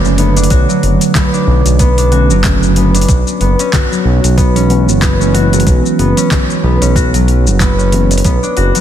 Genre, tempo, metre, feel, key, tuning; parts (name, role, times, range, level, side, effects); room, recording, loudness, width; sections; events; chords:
organic downtempo; 93 BPM; 4/4; swing 57% on 16ths; A4 = 440 Hz
mellow tine electric piano; accompaniment; 0.0-8.1 s; D3 to C#5; -16 LUFS; right 3 dB; medium stereo tremolo, vintage 12-bit sampler grit, sidechain pumping, ping-pong delay
concert harp; arpeggios; 0.0-8.8 s; F#3 to F#4; -15 LUFS; left 3 dB; ping-pong delay
smooth synth bass; bass; 0.0-8.7 s; F#1 to B1; -12 LUFS; right 1 dB
afro-pop drum kit; drums; 0.1-8.8 s; congas, handclaps, hi-hat, shaker; -19 LUFS; left 2 dB; overdrive
electronic kick drum; drums; 0.5-8.4 s; -14 LUFS; right 1 dB
light reverb, digital ambience; dense, heavily limited modern master; -9 LUFS; side -10 dB against mid
0.0-8.8 A section
0.0 Bm7; 3.1 C#m7; 8.2 Bm